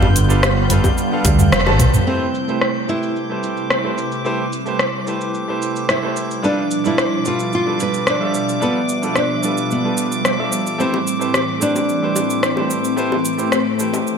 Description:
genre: sunset chillout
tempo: 110 BPM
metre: 4/4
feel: straight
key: A minor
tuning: A4 = 440 Hz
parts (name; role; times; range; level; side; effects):
- bright grand piano; accompaniment; 0.0-14.2 s; G3 to A5; -23 LUFS; right 2 dB; auto-pan, digital delay
- lush unison pad; sustained chords; 0.0-14.2 s; A2 to E5; -23 LUFS; right 1 dB; chorus, phaser
- woody fretless electric bass; bass; 0.0-2.0 s; F1 to D2; -16 LUFS; equal; none
- smooth R&B drum kit; drums; 0.0-14.2 s; cabasa, hi-hat, rim click, toms; -21 LUFS; equal; low-pass filter on perc, low-pass filter on hats, low-pass filter on snare, low-pass filter on toms, low-pass filter on room, gated reverb
- bongos; percussion; 0.0-1.8, 10.9-14.0 s; none; -28 LUFS; left 4 dB; none
- drifting glass-harmonics texture; texture; 0.0-14.2 s; D6 to G6; -28 LUFS; equal; chorus, built-in reverb
- electronic kick drum; drums; 0.8-1.9 s; none; -19 LUFS; equal; overdrive
- nylon-string guitar; melody; 2.1-12.7 s; B3 to B4; -22 LUFS; equal; vintage 12-bit sampler grit, digital delay
room: wet lush hall reverb, RT60 2.0 s, digital ambience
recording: bright 1980s-style digital production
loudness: -16 LUFS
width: side -6 dB against mid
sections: 0.0-2.1 A section; 2.1-14.2 B section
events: band accent 1.5; drum fill 1.7-2.1; filter sweep on analog synth pad 2.1-14.2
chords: 0.0 G7; 2.1 Am7; 6.4 G7; 10.8 Am7

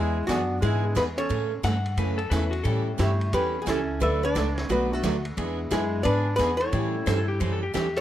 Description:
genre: country, western swing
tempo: 177 BPM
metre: 4/4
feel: swing 63% on 8ths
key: unclear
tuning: A4 = 440 Hz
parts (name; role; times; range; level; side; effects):
- archtop guitar, miked and amplified; melody; 0.0-8.0 s; D4 to E5; -27 LUFS; left 1 dB; none
- warm clarinet; second line; 0.0-8.0 s; G#3 to A4; -32 LUFS; right 1 dB; none
- picked steel-string acoustic guitar; accompaniment; 0.0-7.9 s; C#3 to B4; -31 LUFS; right 6 dB; none
- upright bass; bass; 0.0-8.0 s; B1 to A2; -27 LUFS; equal; none
- vintage drum kit; drums; 0.3-8.0 s; hi-hat, kick drum, ride cymbal, snare drum; -36 LUFS; equal; none
- warm upright piano; accompaniment; 0.8-7.2 s; E3 to A4; -34 LUFS; left 2 dB; none
- clean lap steel guitar; second line; 1.6-2.9, 7.1-8.0 s; F#4 to F#5; -31 LUFS; left 5 dB; none
room: light reverb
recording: none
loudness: -23 LUFS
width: side -12 dB against mid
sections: 0.0-8.0 A section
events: none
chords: 0.0 E7; 1.3 A; 2.7 A7; 4.0 D6; 5.4 E7; 6.7 A7

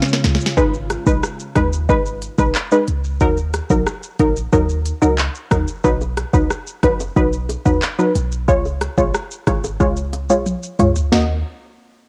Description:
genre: dancehall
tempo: 91 BPM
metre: 4/4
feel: straight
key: Eb minor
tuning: A4 = 437 Hz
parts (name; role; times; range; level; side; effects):
- glassy FM pad; sustained chords; 0.0-0.5 s; Db3 to F4; -28 LUFS; equal; ensemble chorus, built-in reverb, sidechain pumping, cassette tape
- afro-pop drum kit; drums; 0.0-11.3 s; handclaps, hi-hat, kick drum, rim click, shaker, snare drum, toms; -22 LUFS; equal; cassette tape
- clean 808-style bass; bass; 0.2-11.4 s; F#1 to Eb2; -24 LUFS; equal; none
- bongos; percussion; 0.2-0.4, 6.0-11.4 s; none; -31 LUFS; equal; none
- punchy chord stab; accompaniment; 0.6-11.4 s; Gb3 to Eb5; -20 LUFS; equal; chorus, low-pass filter, cassette tape
room: light reverb, digital ambience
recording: home recording on cassette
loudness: -18 LUFS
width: mono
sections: 0.6-11.1 A section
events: drum fill 0.0-0.6, 10.5-11.1; filter sweep on synth stab 0.6-11.1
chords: 0.0 Db; 0.6 Abm; 3.2 Ebm; 5.8 B; 8.5 Db; 11.1 Ebm

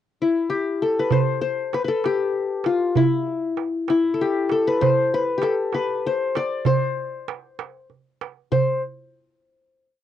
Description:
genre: Arabic maqam ensemble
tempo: 65 BPM (dotted quarters)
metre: 6/8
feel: straight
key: C maqam ajam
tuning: A4 = 442 Hz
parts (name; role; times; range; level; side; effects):
- qanun; melody; 0.2-8.8 s; E4 to D5; -20 LUFS; left 4 dB; cassette tape
- darbuka; percussion; 1.1-8.8 s; none; -24 LUFS; right 8 dB; none
room: moderate booth ambience, RT60 0.2 s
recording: home recording on cassette, nothing above 10.4 kHz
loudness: -20 LUFS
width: side -11 dB against mid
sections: 0.0-1.1 pickup bar; 1.1-8.5 A section; 8.5-10.0 final note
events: none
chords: none

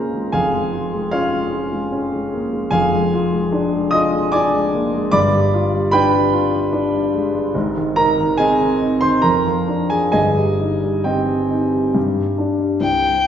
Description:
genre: classical, romantic duo for violin and grand piano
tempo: 64-77 BPM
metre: 3/4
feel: rubato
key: unclear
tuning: A4 = 440 Hz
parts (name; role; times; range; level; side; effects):
- warm concert grand piano; accompaniment; 0.0-13.3 s; F1 to Eb6; -16 LUFS; equal; none
- rich violin; melody; 12.8-13.3 s; G5; -16 LUFS; left 3 dB; none
room: wet scoring stage reverb, RT60 1.8 s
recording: heard from further back in the room, nothing above 7.8 kHz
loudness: -15 LUFS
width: side -9 dB against mid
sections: 0.0-12.8 A section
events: none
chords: 0.3 Db/F; 2.7 Ddim/F; 5.1 G7; 7.5 Ab; 9.2 Ddim/F; 10.1 Cm/G; 12.0 G5

